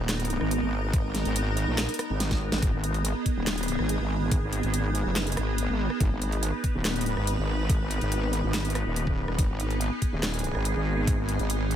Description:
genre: heavy wobble dubstep.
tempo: 142 BPM.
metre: 4/4.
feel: half-time.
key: G# minor.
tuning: A4 = 435 Hz.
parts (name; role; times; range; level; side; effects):
evolving wavetable pad; sustained chords; 0.0-11.8 s; B3 to B4; -31 LUFS; right 1 dB; ensemble chorus, built-in reverb, phaser, sidechain pumping.
wobble bass; bass; 0.0-11.8 s; D#1 to A#1; -28 LUFS; equal; chorus, overdrive.
dubstep drum kit; drums; 0.1-11.8 s; handclaps, hi-hat, rim click, snare drum; -31 LUFS; right 1 dB; studio reverb.
electronic kick drum; drums; 0.9-11.2 s; none; -26 LUFS; equal; studio reverb.
room: little or no reverb.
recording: none.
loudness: -25 LUFS.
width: side -10 dB against mid.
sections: 0.0-11.8 A section.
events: drum fill 2.2-2.6.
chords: 0.0 G#m.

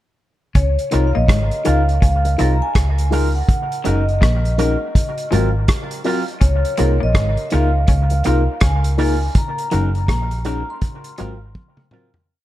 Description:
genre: lovers rock reggae.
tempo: 82 BPM.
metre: 4/4.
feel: swing 62% on 16ths.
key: Db major.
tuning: A4 = 440 Hz.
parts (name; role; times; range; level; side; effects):
vibraphone with soft mallets; melody; 0.6-11.9 s; Db5 to C6; -24 LUFS; equal; tape echo.
twangy electric guitar; riff; 0.6-11.4 s; Gb3 to Db4; -30 LUFS; left 6 dB; tube saturation, wide subtle chorus.
vintage muted fingered electric bass; bass; 0.6-11.5 s; Gb1 to Db2; -17 LUFS; equal; none.
vintage drum kit; drums; 0.6-12.3 s; hi-hat, kick drum, rim click, toms; -19 LUFS; equal; none.
mellow FM electric piano; accompaniment; 0.9-12.1 s; C4 to Bb4; -25 LUFS; left 4 dB; chorus, tube saturation.
electric guitar with an envelope filter; stabs; 0.9-12.1 s; Gb3 to Bb4; -26 LUFS; right 4 dB; dub echo.
room: little or no reverb.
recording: dark, warm production.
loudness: -15 LUFS.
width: side -14 dB against mid.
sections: 0.6-12.3 verse.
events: fade-out 9.4-12.3; drum fill 11.6-12.3.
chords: 0.6 Db69; 3.5 Gb69; 5.0 Ab13; 6.4 Db69; 9.4 Gb69; 10.8 Ab13.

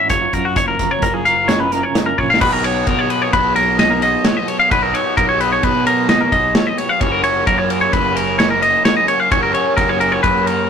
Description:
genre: math rock and midwest emo.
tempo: 130 BPM.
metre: 5/4.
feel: straight.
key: unclear.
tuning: A4 = 440 Hz.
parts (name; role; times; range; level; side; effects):
clean electric guitar; accompaniment; 0.0-4.7 s; F#2 to A#4; -24 LUFS; right 5 dB; tremolo.
twangy electric guitar; arpeggios; 0.0-10.7 s; F#4 to E#5; -15 LUFS; left 1 dB; none.
fuzz fingered electric bass; bass; 0.1-10.7 s; F#1 to B2; -24 LUFS; equal; overdrive.
modern studio drum kit; drums; 0.1-10.6 s; crash cymbal, hi-hat, kick drum, ride cymbal, snare drum; -19 LUFS; equal; none.
raw garage guitar; riff; 2.4-10.7 s; F#2 to F#4; -21 LUFS; right 2 dB; overdrive.
room: moderate small room reverb, RT60 0.5 s.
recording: rough rehearsal-room recording, tube saturation.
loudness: -13 LUFS.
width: side -7 dB against mid.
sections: 0.0-2.4 A section; 2.4-10.7 B section.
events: drum fill 2.2.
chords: 0.1 F#maj7; 2.4 Bmaj9; 7.0 F#.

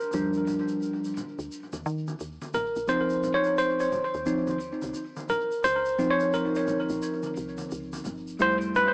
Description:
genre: hip hop, jazz-hop.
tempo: 87 BPM.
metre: 4/4.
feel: swing 62% on 16ths.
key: unclear.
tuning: A4 = 440 Hz.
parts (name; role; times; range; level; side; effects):
tine electric piano; accompaniment; 0.0-8.9 s; F3 to Db5; -25 LUFS; equal; overdrive, tape echo.
tube shaker and congas; percussion; 0.0-8.9 s; none; -41 LUFS; equal; tape echo.
woody FM bass; bass; 0.1-8.9 s; G1 to Eb3; -37 LUFS; equal; none.
room: moderate plate reverb, RT60 2.7 s.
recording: echo-heavy mix, small speaker sound.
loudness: -25 LUFS.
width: side -34 dB against mid.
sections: 0.0-8.9 A section.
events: tine electric piano solo 0.0-8.9.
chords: 0.0 Ebmaj9; 2.9 Dbmaj9; 8.4 Fmaj9.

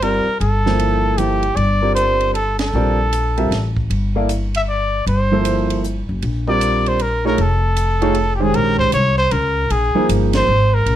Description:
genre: modal jazz.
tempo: 155 BPM.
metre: 3/4.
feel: swing 64% on 8ths.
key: G dorian.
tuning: A4 = 439 Hz.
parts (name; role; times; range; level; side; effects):
clear trumpet; melody; 0.0-11.0 s; G4 to E5; -19 LUFS; equal; plate reverb.
clear baby grand piano; accompaniment; 0.0-10.5 s; Eb3 to F5; -20 LUFS; right 2 dB; none.
upright bass; bass; 0.0-11.0 s; F1 to Db2; -19 LUFS; equal; none.
compact cocktail drum kit; drums; 0.0-11.0 s; hi-hat, kick drum, ride cymbal, snare drum; -30 LUFS; right 3 dB; none.
room: light reverb.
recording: none.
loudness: -15 LUFS.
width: side -11 dB against mid.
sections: 0.0-8.5 A section; 8.5-11.0 B section.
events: band accent 2.5, 10.3.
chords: 0.0 Gm11; 7.4 F7alt; 8.5 Bbm11.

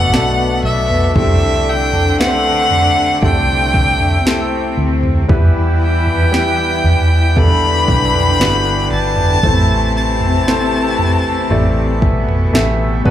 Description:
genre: pop ballad.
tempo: 58 BPM.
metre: 4/4.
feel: straight.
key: unclear.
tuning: A4 = 440 Hz.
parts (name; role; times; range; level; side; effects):
clear violin; melody; 0.0-12.0 s; E5 to B5; -17 LUFS; left 1 dB; slapback echo.
warm studio cello section; second line; 0.0-13.1 s; A2 to E4; -20 LUFS; left 1 dB; none.
warm concert grand piano; accompaniment; 0.0-13.1 s; A2 to E5; -21 LUFS; left 1 dB; slapback echo.
hand-pumped harmonium; sustained chords; 0.0-13.1 s; B2 to G4; -23 LUFS; left 2 dB; none.
vintage muted fingered electric bass; bass; 0.0-13.1 s; F#1 to E2; -17 LUFS; equal; none.
smooth R&B drum kit; drums; 0.1-13.1 s; kick drum, snare drum, toms; -16 LUFS; right 1 dB; overdrive.
room: light reverb.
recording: live gig heard through the venue's PA, club reverb.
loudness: -12 LUFS.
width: side -11 dB against mid.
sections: 0.0-13.1 A section.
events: none.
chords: 0.0 Bm7; 1.2 C6; 5.3 Em; 9.4 Am.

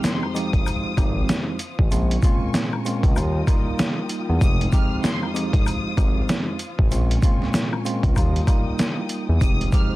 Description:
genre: hip hop, boom-bap hip-hop.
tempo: 96 BPM.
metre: 4/4.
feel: swing 60% on 16ths.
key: F minor.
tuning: A4 = 439 Hz.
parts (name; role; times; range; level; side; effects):
warm studio violin section; melody; 0.0-10.0 s; C6 to F6; -32 LUFS; left 2 dB; high-pass filter, low-pass filter, digital delay.
tine electric piano; accompaniment; 0.0-10.0 s; F2 to G4; -26 LUFS; right 1 dB; medium stereo tremolo, cassette tape, high-pass filter, low-pass filter.
dark studio string section; sustained chords; 0.0-10.0 s; F4 to Eb6; -36 LUFS; left 3 dB; high-pass filter, low-pass filter.
trip hop sampler-style drum kit; drums; 0.0-9.9 s; hi-hat, kick drum, snare drum; -21 LUFS; equal; overdrive.
egg shaker and woodblock; percussion; 0.0-9.9 s; none; -37 LUFS; left 6 dB; none.
smooth synth bass; bass; 0.5-9.7 s; F1 to E2; -22 LUFS; equal; none.
room: little or no reverb.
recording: dense, heavily limited modern master, vinyl crackle.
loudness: -19 LUFS.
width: side -18 dB against mid.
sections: 0.0-10.0 A section.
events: none.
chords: 0.0 Fm7; 1.9 Bbm7; 3.2 Ebadd9; 4.4 Fm7; 6.9 Bbm7; 8.2 Ebadd9; 9.4 Fm7.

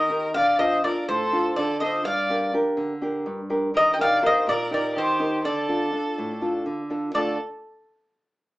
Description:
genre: greek folk, Greek bouzouki band.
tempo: 247 BPM (eighths).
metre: 7/8.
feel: straight.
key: D phrygian.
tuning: A4 = 441 Hz.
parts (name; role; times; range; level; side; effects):
Greek bouzouki; melody; 0.0-7.4 s; C5 to G5; -22 LUFS; equal; none.
bright violin; second line; 0.0-7.4 s; G4 to Eb5; -29 LUFS; right 1 dB; none.
nylon-string guitar; accompaniment; 0.0-7.4 s; G2 to Bb4; -26 LUFS; equal; none.
room: wet small room reverb, RT60 0.5 s.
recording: band playing live in one room, small speaker sound.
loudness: -21 LUFS.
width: side -18 dB against mid.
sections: 0.0-7.1 A section; 7.1-8.6 B section.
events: none.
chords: 0.3 Dm; 2.0 Gm; 3.7 Eb; 5.4 Dm.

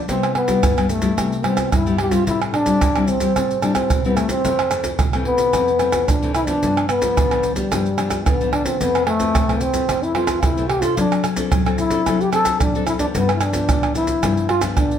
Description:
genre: samba and choro.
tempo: 110 BPM.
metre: 4/4.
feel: straight.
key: C major.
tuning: A4 = 439 Hz.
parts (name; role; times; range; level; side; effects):
nylon-string guitar; accompaniment; 0.0-15.0 s; F2 to A4; -22 LUFS; left 4 dB; none.
breathy trombone; melody; 0.1-15.0 s; G3 to A4; -20 LUFS; left 1 dB; none.
maracas, surdo, pandeiro and tamborim; percussion; 0.1-15.0 s; none; -21 LUFS; right 2 dB; none.
room: wet studio reverb, RT60 0.8 s.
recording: heard from further back in the room.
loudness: -16 LUFS.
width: side -9 dB against mid.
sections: 0.1-15.0 A section.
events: none.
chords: 0.1 Cmaj7; 2.3 Am7; 4.4 Fmaj7; 6.6 G7; 8.8 Fmaj7; 11.0 D7/F#; 13.1 G7.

